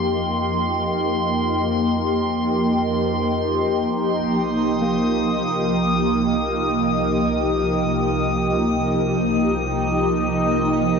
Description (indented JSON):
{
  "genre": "ambient",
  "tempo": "free time",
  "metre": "none",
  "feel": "none",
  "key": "C minor",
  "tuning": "A4 = 440 Hz",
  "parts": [
    { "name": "shimmering ambient pad", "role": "sustained chords", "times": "0.0-11.0 s", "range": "F3 to G4", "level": "-20 LUFS", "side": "equal", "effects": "chorus, built-in reverb, phaser" },
    { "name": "tine electric piano", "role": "arpeggios", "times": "0.0-11.0 s", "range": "Bb3", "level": "-30 LUFS", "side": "right 1 dB", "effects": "none" },
    { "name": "dark studio double bass section", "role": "bass", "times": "0.0-11.0 s", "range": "C2 to F2", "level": "-30 LUFS", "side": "equal", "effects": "none" },
    { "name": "drifting glass-harmonics texture", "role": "texture", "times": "0.0-11.0 s", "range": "C6 to Eb6", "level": "-26 LUFS", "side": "equal", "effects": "chorus, built-in reverb" }
  ],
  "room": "wet huge ambient reverb, RT60 8.4 s",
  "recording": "worn, warbling old tape, cassette tape, warbly pitch drift, nothing above 7.9 kHz",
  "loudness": "-18 LUFS",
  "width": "side -5 dB against mid",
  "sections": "0.0-11.0 A section",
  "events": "none",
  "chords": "0.0 F5; 4.3 Cm7"
}